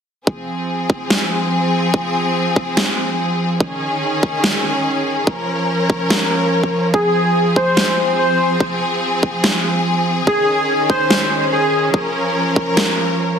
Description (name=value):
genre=heavy wobble dubstep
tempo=144 BPM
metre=4/4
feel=swing 55% on 16ths, half-time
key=F minor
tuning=A4 = 438 Hz
part: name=clear symphonic string section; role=sustained chords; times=0.3-13.4 s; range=Eb3 to Bb4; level=-18 LUFS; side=equal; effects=sidechain pumping
part: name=electronic kick drum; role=drums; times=0.3-12.7 s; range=none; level=-15 LUFS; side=equal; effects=overdrive, high-pass filter on kick
part: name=electronic snare drum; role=drums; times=1.1-12.9 s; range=none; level=-18 LUFS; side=equal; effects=none
part: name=soft supersaw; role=melody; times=6.9-11.9 s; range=Ab4 to C5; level=-17 LUFS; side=equal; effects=tape echo
room=moderate lush hall reverb, RT60 1.9 s, digital ambience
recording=heavily compressed radio sound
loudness=-15 LUFS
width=side -7 dB against mid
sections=0.3-13.4 A section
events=kick drops out 13.2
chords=0.3 Fm; 3.6 Dbsus2; 5.3 Bbm; 6.9 Fm; 10.3 Dbsus2; 11.9 Bbm